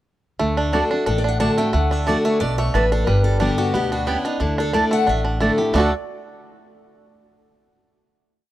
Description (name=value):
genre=bluegrass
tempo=180 BPM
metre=4/4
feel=swing 53% on 8ths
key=D major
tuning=A4 = 440 Hz
part: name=picked steel-string acoustic guitar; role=accompaniment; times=0.4-5.9 s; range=G2 to G4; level=-22 LUFS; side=left 1 dB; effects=none
part: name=bluegrass banjo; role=arpeggios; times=0.4-5.9 s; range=G3 to A4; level=-24 LUFS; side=right 3 dB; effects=none
part: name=upright bass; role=bass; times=0.4-5.9 s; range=G1 to D2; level=-22 LUFS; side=equal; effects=none
part: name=mandolin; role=stabs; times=0.7-5.9 s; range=A3 to A5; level=-24 LUFS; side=right 3 dB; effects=none
part: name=picked acoustic archtop guitar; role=melody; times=1.1-5.9 s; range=Eb4 to A5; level=-25 LUFS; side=left 2 dB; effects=none
room=small room ambience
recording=dry, close 1970s-style studio recording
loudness=-17 LUFS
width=side -14 dB against mid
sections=0.4-5.7 A section; 5.7-7.1 final chord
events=none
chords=0.4 D; 3.1 G; 4.4 Dsus2; 5.7 D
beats=| 0.40 0.73 1.07 1.40 | 1.74 2.07 2.40 2.74 | 3.07 3.41 3.74 4.08 | 4.41 4.74 5.08 5.41 | 5.75